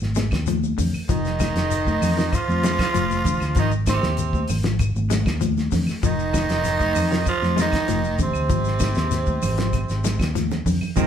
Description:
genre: afrobeat.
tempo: 97 BPM.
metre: 4/4.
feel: straight.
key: F dorian.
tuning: A4 = 440 Hz.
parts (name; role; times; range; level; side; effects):
fingered electric bass; bass; 0.0-11.1 s; F1 to F2; -24 LUFS; equal; none.
cloth-damped thuddy drum kit; drums; 0.0-11.1 s; hi-hat, kick drum, snare drum; -26 LUFS; equal; none.
congas; percussion; 0.0-11.0 s; none; -28 LUFS; equal; none.
shekere; percussion; 0.0-11.1 s; none; -32 LUFS; left 7 dB; none.
semi-hollow electric guitar; arpeggios; 0.2-11.1 s; D3 to Ab3; -29 LUFS; left 8 dB; none.
claves; percussion; 0.3-11.0 s; none; -40 LUFS; right 1 dB; none.
raspy tenor saxophone; melody; 1.1-11.1 s; C4 to F4; -26 LUFS; right 3 dB; none.
raspy tenor saxophone; second line; 1.1-11.1 s; C3 to F3; -28 LUFS; right 5 dB; none.
semi-hollow electric guitar; stabs; 11.0-11.1 s; Eb3 to C4; -20 LUFS; right 6 dB; none.
room: wet studio reverb, RT60 0.8 s.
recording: band playing live in one room.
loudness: -19 LUFS.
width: side -9 dB against mid.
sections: 0.0-11.1 A section.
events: drum fill 10.0-11.0.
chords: 0.0 Fm7.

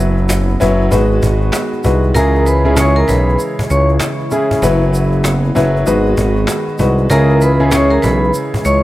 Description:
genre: hip hop, boom-bap hip-hop.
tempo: 97 BPM.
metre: 4/4.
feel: swing 61% on 16ths.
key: C# dorian.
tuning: A4 = 440 Hz.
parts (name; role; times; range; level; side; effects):
warm concert grand piano; accompaniment; 0.0-8.8 s; C#3 to B4; -16 LUFS; left 1 dB; cassette tape.
hollow soft pad; sustained chords; 0.0-8.8 s; C#3 to F#4; -23 LUFS; right 1 dB; chorus.
smooth synth bass; bass; 0.0-8.8 s; F#1 to C#2; -14 LUFS; equal; none.
cajon; drums; 0.0-8.8 s; none; -21 LUFS; equal; none.
tube shaker; percussion; 0.3-8.8 s; none; -30 LUFS; right 2 dB; none.
vibraphone with hard mallets; melody; 2.1-8.8 s; A#4 to C#6; -16 LUFS; equal; digital delay.
room: light reverb, small room ambience.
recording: none.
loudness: -11 LUFS.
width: side -16 dB against mid.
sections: 0.0-8.8 A section.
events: none.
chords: 0.0 F#7sus4; 0.9 G#m7; 2.2 C#m; 4.6 F#7sus4; 5.9 G#m7; 7.1 C#m.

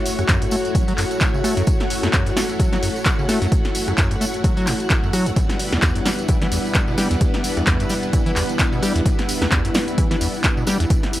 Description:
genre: acid house.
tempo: 130 BPM.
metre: 4/4.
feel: swing 56% on 16ths.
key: F# phrygian.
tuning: A4 = 439 Hz.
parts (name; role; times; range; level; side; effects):
string machine, full ensemble; sustained chords; 0.0-11.2 s; G3 to C#5; -26 LUFS; equal; ensemble chorus, sidechain pumping.
airy breathy pad; texture; 0.0-11.2 s; E4 to F#5; -27 LUFS; left 1 dB; chorus, sidechain pumping.
punchy analog drum machine; drums; 0.1-11.2 s; handclaps, hi-hat, rim click, snare drum; -24 LUFS; equal; none.
tambourine; percussion; 0.1-11.2 s; none; -33 LUFS; right 2 dB; none.
deep acid bass; riff; 0.2-10.9 s; E2 to A3; -24 LUFS; equal; tube saturation, sidechain pumping, tape echo.
electronic kick drum; drums; 0.3-11.0 s; none; -20 LUFS; equal; none.
room: digital ambience.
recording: dry, gritty hardware recording.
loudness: -17 LUFS.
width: side -14 dB against mid.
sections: 0.0-11.2 A section.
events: none.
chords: 0.0 F#m7; 5.4 Em7.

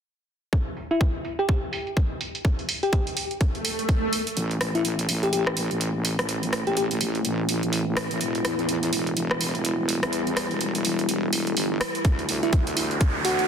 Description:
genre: bass house.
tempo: 125 BPM.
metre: 4/4.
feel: swing 59% on 16ths.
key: A minor.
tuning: A4 = 443 Hz.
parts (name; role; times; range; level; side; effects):
electronic kick drum; drums; 0.5-4.0, 12.0-13.1 s; none; -24 LUFS; equal; none.
house drum kit; drums; 0.5-13.5 s; hi-hat, rim click; -28 LUFS; right 1 dB; low-pass filter on hats, soft clipping on snare, low-pass filter on snare, low-pass filter on room.
bell-like FM electric piano; melody; 0.9-6.9, 12.4-13.5 s; E4 to G4; -28 LUFS; left 1 dB; chorus, tremolo, digital delay.
swell and riser; sound effects; 3.6-4.4, 12.4-13.5 s; none; -30 LUFS; right 2 dB; none.
deep dark ambient pad; sustained chords; 5.7-13.5 s; A3 to F#5; -29 LUFS; equal; chorus, built-in reverb, sidechain pumping.
wobble bass; bass; 4.4-13.5 s; E1 to E2; -28 LUFS; equal; chorus, overdrive, sidechain pumping, high-pass filter.
room: moderate lush hall reverb, RT60 2.7 s.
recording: dense, heavily limited modern master.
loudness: -22 LUFS.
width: side -7 dB against mid.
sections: 0.5-4.4 A section; 4.4-13.5 B section.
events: swell 3.6-4.4; build-up 4.4-13.5; filter sweep on ambient pad 4.4-13.5; drum fill 12.0-13.5; riser 12.4-13.5.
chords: 0.5 N.C.; 4.4 Am; 8.2 Em; 12.0 D7.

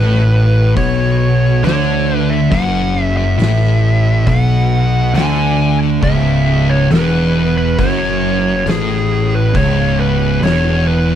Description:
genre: stoner and doom metal.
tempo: 68 BPM.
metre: 4/4.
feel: straight.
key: C# phrygian.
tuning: A4 = 438 Hz.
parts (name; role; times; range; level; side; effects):
fuzz lead guitar; melody; 0.0-11.2 s; G#4 to G#5; -19 LUFS; equal; distortion.
thick fuzz guitar; riff; 0.0-11.2 s; C#2 to D3; -16 LUFS; left 6 dB; distortion.
thick fuzz guitar; riff; 0.0-11.2 s; C#2 to D3; -16 LUFS; right 7 dB; distortion.
fuzz picked electric bass; bass; 0.0-11.2 s; C#1 to D2; -19 LUFS; equal; overdrive.
oversized low-tuned drum kit; drums; 0.1-10.6 s; hi-hat, kick drum, snare drum; -22 LUFS; equal; none.
room: small room ambience.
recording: dry, close 1970s-style studio recording.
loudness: -11 LUFS.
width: side -10 dB against mid.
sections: 0.0-11.2 A section.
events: none.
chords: 0.0 F#5; 6.0 C#m.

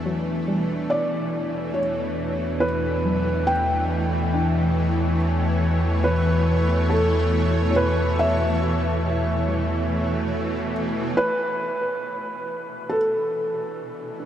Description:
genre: ambient.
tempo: 70 BPM.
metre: 3/4.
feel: straight.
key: E dorian.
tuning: A4 = 440 Hz.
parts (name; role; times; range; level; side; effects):
shimmering ambient pad; sustained chords; 0.0-14.3 s; B2 to C#5; -27 LUFS; right 1 dB; chorus, built-in reverb.
warm sub bass; bass; 0.0-11.2 s; E2; -25 LUFS; equal; none.
bowed-like drone; drone; 0.0-14.3 s; E3; -28 LUFS; left 1 dB; built-in reverb.
soft round pluck; arpeggios; 0.1-14.3 s; F#3 to E5; -34 LUFS; equal; none.
felt-muted upright piano; melody; 0.9-14.3 s; A4 to G5; -25 LUFS; equal; tape echo.
room: wet huge ambient reverb, RT60 8.4 s.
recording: none.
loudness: -20 LUFS.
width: side -10 dB against mid.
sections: 0.0-11.2 A section; 11.2-14.3 A section.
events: none.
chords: 0.0 Em7.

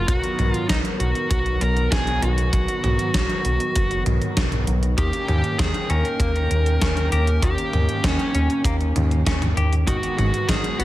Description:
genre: synthwave.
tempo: 98 BPM.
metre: 4/4.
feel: straight.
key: unclear.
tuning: A4 = 439 Hz.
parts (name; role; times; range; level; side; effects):
dark smooth lead guitar; melody; 0.0-10.8 s; C#4 to A#4; -25 LUFS; equal; overdrive, tape echo.
brassy analog pad; sustained chords; 0.0-10.8 s; D#3 to G5; -29 LUFS; equal; chorus, sidechain pumping.
round analog bass; bass; 0.0-10.8 s; F#1 to D#2; -22 LUFS; equal; tube saturation, sidechain pumping.
gated 80s digital drum machine; drums; 0.1-10.8 s; hi-hat, snare drum, toms; -26 LUFS; equal; gated reverb, gated reverb snare, overdrive.
kick drum; drums; 0.1-10.6 s; none; -27 LUFS; equal; none.
semi-hollow electric guitar; arpeggios; 5.0-10.8 s; D#3 to G4; -31 LUFS; left 4 dB; tape echo.
room: little or no reverb.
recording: none.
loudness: -18 LUFS.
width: side -15 dB against mid.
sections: 0.0-10.8 A section.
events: none.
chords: 0.1 B; 5.0 D#7; 9.9 G#m7.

